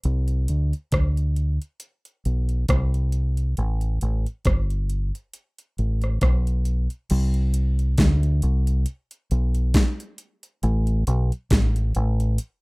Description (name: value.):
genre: lovers rock reggae.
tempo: 68 BPM.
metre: 4/4.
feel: swing 56% on 16ths.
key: unclear.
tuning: A4 = 438 Hz.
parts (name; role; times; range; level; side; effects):
dubstep drum kit; drums; 0.0-12.6 s; crash cymbal, hi-hat, kick drum, rim click, snare drum; -22 LUFS; equal; overdrive.
deep dub fingered electric bass; bass; 0.1-12.4 s; G1 to D2; -20 LUFS; equal; none.
room: little or no reverb.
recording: rough home demo mix.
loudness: -20 LUFS.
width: side -29 dB against mid.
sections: 0.0-7.1 A section; 7.1-12.6 B section.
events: none.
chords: none.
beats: | 0.04 0.93 1.81 2.69 | 3.57 4.46 5.34 6.22 | 7.10 7.98 8.87 9.75 | 10.63 11.51 12.39.